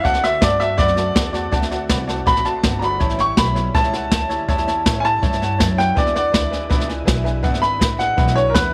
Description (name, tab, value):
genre	rockabilly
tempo	162 BPM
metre	4/4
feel	straight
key	A mixolydian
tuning	A4 = 440 Hz
part	bright upright piano	melody	0.0-8.7 s	Bb4 to C#6	-21 LUFS	equal	none
part	honky-tonk upright piano	accompaniment	0.0-8.7 s	B4 to C6	-31 LUFS	equal	none
part	picked old ladder-braced acoustic guitar	accompaniment	0.0-8.7 s	E2 to F#4	-30 LUFS	equal	none
part	upright bass	bass	0.0-8.7 s	G1 to A2	-26 LUFS	equal	none
part	jazz brush drum kit	drums	0.0-8.6 s	hi-hat, kick drum, snare drum	-22 LUFS	equal	none
room	light reverb, studio reverb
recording	none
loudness	-18 LUFS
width	mono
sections	0.0-8.7 A section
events	upright piano solo 0.0-8.7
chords	0.1 D7; 3.0 A7; 6.0 E7